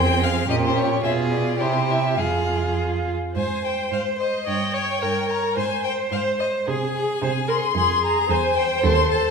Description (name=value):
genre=quick classical-period movement for string quartet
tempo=109 BPM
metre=2/4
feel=straight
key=F minor, Ab major from 3.4 s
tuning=A4 = 440 Hz
part: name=clear violin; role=melody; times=0.0-9.3 s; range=C5 to C6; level=-25 LUFS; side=left 6 dB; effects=none
part: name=rich violin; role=second line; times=0.0-9.3 s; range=G4 to Db5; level=-26 LUFS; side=left 2 dB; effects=none
part: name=rich viola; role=accompaniment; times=0.0-9.3 s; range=C4 to Eb5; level=-25 LUFS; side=right 3 dB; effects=none
part: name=warm cello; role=bass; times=0.0-9.3 s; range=Eb2 to C3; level=-25 LUFS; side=right 4 dB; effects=none
room=wet recital hall reverb, RT60 1.6 s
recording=minimal, uncompressed stereo recording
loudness=-20 LUFS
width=side -5 dB against mid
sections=0.0-3.4 A section; 3.4-9.3 B section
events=none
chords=0.5 Gdim/Bb; 1.0 Bdim7; 1.6 C; 2.2 Fm; 3.4 Ab; 4.5 Gdim; 5.6 Ab; 6.7 Ab/C; 7.8 Fm; 8.3 C/E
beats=0.49 | 1.04 1.60 | 2.19 2.78 | 3.35 3.91 | 4.46 5.01 | 5.56 6.11 | 6.67 7.22 | 7.76 8.29 | 8.84